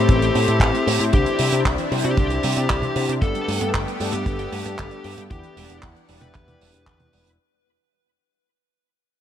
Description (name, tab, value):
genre	italo disco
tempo	115 BPM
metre	4/4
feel	straight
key	E minor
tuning	A4 = 439 Hz
part	high-gain lead guitar	melody	0.0-7.3 s	G4 to B4	-26 LUFS	left 2 dB	distortion, ping-pong delay
part	lush unison pad	sustained chords	0.0-7.4 s	E3 to F#5	-28 LUFS	left 1 dB	chorus
part	wide unison pluck	arpeggios	0.0-7.4 s	D3 to E4	-32 LUFS	right 4 dB	ping-pong delay
part	mellow synth brass	stabs	0.0-7.4 s	B3 to C5	-27 LUFS	left 5 dB	chorus, cassette tape
part	picked electric bass with an envelope filter	bass	0.0-7.4 s	E1 to C3	-25 LUFS	equal	tube saturation
part	damped 70s drum kit	drums	0.1-7.4 s	handclaps, hi-hat, toms	-27 LUFS	right 3 dB	small room ambience
part	kick drum	drums	0.1-7.0 s	none	-20 LUFS	equal	small room ambience
room	light reverb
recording	none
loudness	-18 LUFS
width	side -10 dB against mid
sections	0.0-7.4 A section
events	fade-out 0.0-7.4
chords	0.0 Am; 1.1 Cadd9; 3.2 Gadd9; 5.3 Em7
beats	0.09 0.61 | 1.13 1.65 2.18 2.70 | 3.22 3.74 4.26 4.78 | 5.31 5.83 6.35 6.87